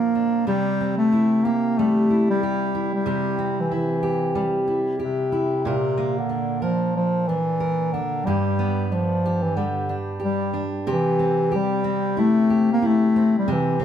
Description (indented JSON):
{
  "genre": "pop",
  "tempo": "92 BPM",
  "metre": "4/4",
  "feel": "swing 60% on 16ths",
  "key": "C mixolydian",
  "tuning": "A4 = 441 Hz",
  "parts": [
    { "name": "mellow bass clarinet", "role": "melody", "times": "0.0-13.8 s", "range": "C3 to Bb3", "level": "-21 LUFS", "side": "left 1 dB", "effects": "none" },
    { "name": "fingerpicked steel-string acoustic guitar", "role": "accompaniment", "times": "0.0-13.8 s", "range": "G2 to Bb4", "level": "-25 LUFS", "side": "right 1 dB", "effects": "none" }
  ],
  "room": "wet studio reverb, RT60 0.7 s",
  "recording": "band playing live in one room",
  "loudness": "-19 LUFS",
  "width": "side -9 dB against mid",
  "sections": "0.0-10.9 A section; 10.9-13.8 B section",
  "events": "none",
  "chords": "0.5 C; 5.7 Bb; 8.3 G; 10.9 C"
}